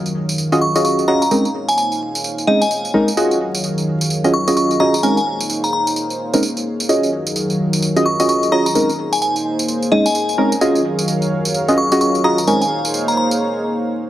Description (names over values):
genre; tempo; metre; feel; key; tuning
UK garage, two-step garage; 129 BPM; 4/4; swing 61% on 16ths; Eb minor; A4 = 442 Hz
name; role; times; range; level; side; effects
warm analog pad; sustained chords; 0.0-14.1 s; Eb3 to F5; -22 LUFS; equal; chorus
tambourine; drums; 0.1-13.4 s; none; -24 LUFS; right 1 dB; overdrive, small room ambience
deep mellow chord stab; stabs; 0.5-12.6 s; Ab3 to Eb5; -16 LUFS; right 1 dB; chorus, tape echo
glassy synth bell; melody; 0.6-13.3 s; Eb5 to Db6; -19 LUFS; left 1 dB; chorus, tape echo
room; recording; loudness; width
moderate plate reverb, RT60 1.4 s; heavily compressed radio sound, vinyl crackle; -14 LUFS; side -13 dB against mid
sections
0.0-14.1 A section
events
filter sweep on analog synth pad 0.0-14.1; break 13.4-14.1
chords
0.0 Ebm11; 1.3 Bbm11; 3.2 Ebm11; 5.0 Bbm11; 6.9 Ebm11; 8.8 Bbm11; 10.6 Ebm11; 12.5 Bbm11